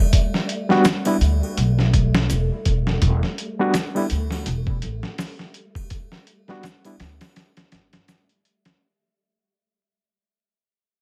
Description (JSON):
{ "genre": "trip hop", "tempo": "83 BPM", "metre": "4/4", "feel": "swing 57% on 16ths", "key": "E minor", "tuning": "A4 = 441 Hz", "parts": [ { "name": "wind-like tuned noise texture", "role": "texture", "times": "0.0-8.9 s", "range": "G3 to A3", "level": "-35 LUFS", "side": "equal", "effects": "built-in reverb" }, { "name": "dusty soul sampler-style drum kit", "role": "drums", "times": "0.1-8.8 s", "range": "hi-hat, kick drum, snare drum", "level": "-24 LUFS", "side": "equal", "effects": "overdrive" }, { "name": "overdriven reed electric piano", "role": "accompaniment", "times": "0.7-7.0 s", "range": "G3 to F#4", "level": "-23 LUFS", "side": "equal", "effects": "fast tremolo, tape echo" }, { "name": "egg shaker and triangle", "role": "percussion", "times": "0.8-8.3 s", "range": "none", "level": "-42 LUFS", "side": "equal", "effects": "none" }, { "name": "upright bass", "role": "bass", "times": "1.2-7.9 s", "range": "E1 to D2", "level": "-22 LUFS", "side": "equal", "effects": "none" } ], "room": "little or no reverb", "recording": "vinyl crackle", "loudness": "-21 LUFS", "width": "mono", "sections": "0.0-8.8 A section", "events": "fade-out 0.0-8.8", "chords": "0.0 Em7" }